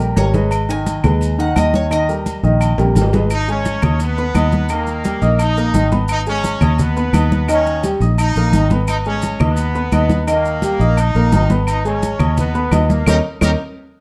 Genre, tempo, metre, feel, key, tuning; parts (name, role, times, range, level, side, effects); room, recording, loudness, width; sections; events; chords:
latin, salsa; 172 BPM; 4/4; straight; G# harmonic minor; A4 = 439 Hz
Cuban tres; melody; 0.0-2.9 s; A#4 to G#5; -29 LUFS; equal
warm baby grand piano; accompaniment; 0.0-13.5 s; D#3 to D#6; -22 LUFS; equal
fingered electric bass; bass; 0.0-13.5 s; G#1 to D#2; -19 LUFS; equal
congas; percussion; 0.0-13.5 s; -23 LUFS; equal
maracas; percussion; 0.0-13.5 s; -38 LUFS; equal
timbales and agogo bells; percussion; 0.2-13.5 s; -28 LUFS; equal
claves; percussion; 0.5-13.5 s; -33 LUFS; equal
clear trumpet section; melody; 3.3-13.5 s; A#3 to D#5; -26 LUFS; equal
moderate studio reverb, RT60 0.7 s; dark, warm production; -16 LUFS; mono
0.0-3.3 A section; 3.3-14.0 B section
Cuban tres solo 0.0-3.3; drum fill 2.8-3.3; band accent 13.1-14.0
0.0 D#7 (rootless); 0.5 G#m; 1.9 D#; 3.3 G#m; 4.7 D#; 6.1 G#m; 7.5 D#7; 8.9 G#m; 10.3 D#; 11.7 G#m; 13.1 D#7(no3)